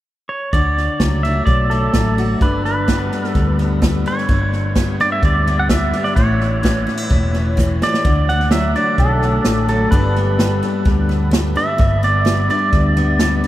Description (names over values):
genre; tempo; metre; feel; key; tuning
honky-tonk and classic country; 128 BPM; 4/4; straight; D major; A4 = 442 Hz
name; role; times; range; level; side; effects
pedal steel guitar; melody; 0.3-13.5 s; A4 to F#5; -20 LUFS; right 2 dB; none
picked steel-string acoustic guitar; accompaniment; 0.5-13.5 s; G2 to A4; -21 LUFS; left 2 dB; none
mellow fretless electric bass; bass; 0.5-13.4 s; E1 to D2; -19 LUFS; equal; none
natural country drum kit; drums; 0.5-13.5 s; hi-hat, kick drum, snare drum; -19 LUFS; equal; none
room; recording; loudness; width
moderate huge ambient reverb, RT60 7.5 s; in a vast, echoing space; -14 LUFS; side -14 dB against mid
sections
0.5-8.0 A section; 8.0-13.5 B section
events
drum fill 7.6-8.0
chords
0.0 N.C.; 0.5 D; 2.4 G; 6.2 A; 8.0 D; 9.9 G